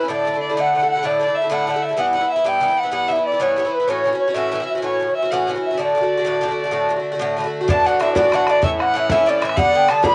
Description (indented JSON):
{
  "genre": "celtic folk, Celtic slide",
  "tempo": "126 BPM (dotted quarters)",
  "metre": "12/8",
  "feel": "straight",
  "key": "D major",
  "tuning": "A4 = 438 Hz",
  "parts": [
    { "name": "mellow baroque flute", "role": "melody", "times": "0.0-10.1 s", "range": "B4 to B5", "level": "-22 LUFS", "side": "equal", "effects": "cassette tape" },
    { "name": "rich fiddle", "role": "second line", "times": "0.0-10.1 s", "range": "B4 to B5", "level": "-28 LUFS", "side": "equal", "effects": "cassette tape" },
    { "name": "Irish bouzouki", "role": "accompaniment", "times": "0.0-10.1 s", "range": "G2 to F#4", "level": "-23 LUFS", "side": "equal", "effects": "cassette tape" },
    { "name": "bodhran", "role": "percussion", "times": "7.7-10.1 s", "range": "none", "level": "-25 LUFS", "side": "equal", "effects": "none" }
  ],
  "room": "moderate booth ambience, RT60 0.2 s",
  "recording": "home recording on cassette, nothing above 10.9 kHz",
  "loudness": "-19 LUFS",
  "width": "mono",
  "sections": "0.0-7.7 A section; 7.7-10.1 B section",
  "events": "none",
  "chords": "0.1 Dsus2; 2.0 Em; 3.9 A6; 5.8 D; 7.7 Dadd9; 8.6 A; 9.6 G",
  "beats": "| 0.10 0.57 1.04 1.52 | 1.99 2.47 2.94 3.42 | 3.89 4.37 4.84 5.31 | 5.79 6.26 6.74 7.21 | 7.68 8.15 8.62 9.10 | 9.57 10.04"
}